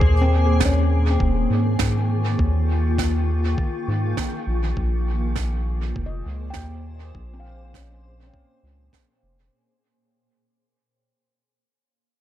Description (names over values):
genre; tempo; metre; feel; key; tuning
ambient dub; 101 BPM; 4/4; swing 56% on 16ths; Bb minor; A4 = 443 Hz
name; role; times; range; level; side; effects
granular cloud pad; sustained chords; 0.0-9.5 s; Bb2 to Db6; -27 LUFS; equal; built-in reverb
handpan; arpeggios; 0.0-11.0 s; C4 to G5; -29 LUFS; left 3 dB; low-pass filter, tape echo
round analog bass; bass; 0.0-9.5 s; Eb1 to Ab2; -21 LUFS; equal; none
electronic kick drum; drums; 0.0-9.1 s; none; -24 LUFS; equal; none
snare drum; drums; 0.6-9.1 s; none; -30 LUFS; right 8 dB; dub echo
room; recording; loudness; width
light reverb, studio ambience; echo-heavy mix; -19 LUFS; side -12 dB against mid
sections
0.0-9.5 A section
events
fade-out 0.0-9.5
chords
0.0 Eb9sus4; 4.8 Bbm7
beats
| 0.01 0.61 1.20 1.79 | 2.39 2.98 3.58 4.17 | 4.77 5.36 5.95 6.55 | 7.14 7.74 8.33 8.92